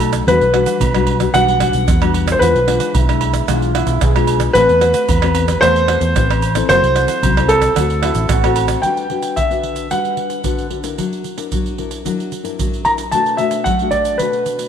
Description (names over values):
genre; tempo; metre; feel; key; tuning
samba and choro; 112 BPM; 4/4; straight; E minor, G major from 8.8 s; A4 = 440 Hz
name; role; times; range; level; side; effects
warm trombone; second line; 0.0-4.4, 8.0-8.8 s; E4 to A4; -24 LUFS; right 8 dB; none
nylon-string guitar; accompaniment; 0.0-14.7 s; A2 to B4; -21 LUFS; left 9 dB; none
fingered electric bass; bass; 0.0-8.7 s; F#1 to E2; -18 LUFS; equal; none
agogo bells, tube shaker, pandeiro, tamborim and surdo; percussion; 0.0-14.7 s; none; -20 LUFS; right 3 dB; none
clear grand piano; melody; 0.3-14.7 s; A4 to A#5; -16 LUFS; equal; none
room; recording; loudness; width
moderate echo chamber reverb, RT60 1.9 s, small room ambience; 1960s-style stereo with parts hard left and right; -13 LUFS; side -8 dB against mid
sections
0.0-8.8 A section; 8.8-14.7 B section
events
none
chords
0.3 Em9; 2.4 E7b9; 4.6 Am9; 6.7 F#m7b5; 7.8 D7; 8.8 Gmaj7; 11.0 F#aug7; 13.1 Bm7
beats
| 0.28 0.82 1.35 1.89 | 2.42 2.95 3.49 4.02 | 4.56 5.09 5.62 6.16 | 6.69 7.23 7.76 8.30 | 8.83 9.37 9.91 10.44 | 10.98 11.52 12.06 12.59 | 13.13 13.67 14.21